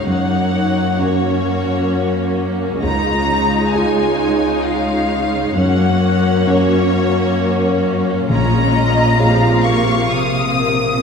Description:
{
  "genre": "cinematic",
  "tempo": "66 BPM",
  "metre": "3/4",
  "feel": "rubato",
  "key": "unclear",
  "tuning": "A4 = 440 Hz",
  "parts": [
    { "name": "rich symphonic violin section", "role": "melody", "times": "0.0-11.0 s", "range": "Db5 to Eb6", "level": "-21 LUFS", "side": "left 3 dB", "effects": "none" },
    { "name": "warm symphonic violin section", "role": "second line", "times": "0.0-11.0 s", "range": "F4 to F5", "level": "-22 LUFS", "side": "left 2 dB", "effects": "none" },
    { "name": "dark concert grand piano", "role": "accompaniment", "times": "0.0-11.0 s", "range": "Bb1 to Db5", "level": "-20 LUFS", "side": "equal", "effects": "none" },
    { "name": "rich symphonic viola section", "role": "accompaniment", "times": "0.0-11.0 s", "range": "C3 to Eb4", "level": "-20 LUFS", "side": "equal", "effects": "none" },
    { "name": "warm studio cello section", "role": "bass", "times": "0.0-11.0 s", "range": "Db2 to C3", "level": "-20 LUFS", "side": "equal", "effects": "none" }
  ],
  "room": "wet scoring stage reverb, RT60 1.8 s",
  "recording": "heard from further back in the room",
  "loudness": "-14 LUFS",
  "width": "side -6 dB against mid",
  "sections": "0.0-11.0 A section",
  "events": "none",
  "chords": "0.1 Gb; 2.8 Dbadd9; 5.6 Gb; 8.3 Bbm7"
}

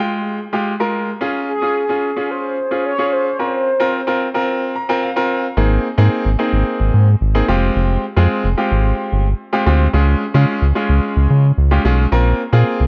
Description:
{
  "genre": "dance-pop",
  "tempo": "110 BPM",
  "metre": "4/4",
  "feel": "straight",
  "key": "Ab major",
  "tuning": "A4 = 444 Hz",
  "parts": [
    { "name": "mellow horn-like synth lead", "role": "melody", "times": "0.0-4.8 s", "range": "Ab4 to Db5", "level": "-23 LUFS", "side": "equal", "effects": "chorus, digital delay" },
    { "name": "clear baby grand piano", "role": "accompaniment", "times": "0.0-12.8 s", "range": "Ab3 to Bb5", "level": "-20 LUFS", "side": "equal", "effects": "none" },
    { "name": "round analog bass", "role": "bass", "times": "5.6-12.9 s", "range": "F1 to Db3", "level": "-15 LUFS", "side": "equal", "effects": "none" }
  ],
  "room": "light reverb, small room ambience",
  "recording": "worn, warbling old tape, cassette tape, warbly pitch drift, nothing above 10.5 kHz",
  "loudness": "-17 LUFS",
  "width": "mono",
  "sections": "0.0-5.6 A section; 5.6-12.9 B section",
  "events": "build-up 0.0-5.6; grand piano fill 4.5-5.6; drop 5.6-12.9",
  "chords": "0.0 Fmadd9; 1.2 Db; 3.4 Bbsus2; 5.6 Abadd9; 7.5 Fmadd9; 9.9 Db; 12.1 Bbsus2"
}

